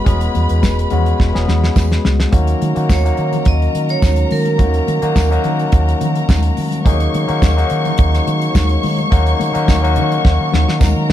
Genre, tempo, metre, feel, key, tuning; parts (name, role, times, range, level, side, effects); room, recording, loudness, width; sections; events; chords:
disco; 106 BPM; 4/4; straight; A4 = 435 Hz
warm studio violin section; second line; 0.0-11.1 s; A#4 to C#6; -24 LUFS; left 2 dB
barky tine electric piano; accompaniment; 0.0-11.1 s; G#3 to G#4; -21 LUFS; left 5 dB; overdrive
fingered electric bass; bass; 0.1-11.1 s; E1 to D#3; -16 LUFS; right 1 dB
damped 70s drum kit; drums; 0.1-11.1 s; hi-hat, kick drum, snare drum; -15 LUFS; equal
congas; percussion; 0.1-11.1 s; -26 LUFS; left 6 dB
tambourine; percussion; 0.6-10.9 s; -36 LUFS; right 8 dB
mellow tonewheel organ; sustained chords; 2.3-11.1 s; D#3 to D#4; -24 LUFS; right 3 dB; chorus vibrato, slow rotary speaker
vibraphone with hard mallets; melody; 2.9-5.4 s; A#4 to D#5; -21 LUFS; right 5 dB
little or no reverb; dark, warm production; -12 LUFS; side -12 dB against mid
0.0-2.3 A section; 2.3-11.1 B section
drum fill 1.2-2.3, 10.2-11.1
0.0 E6; 2.3 D#m7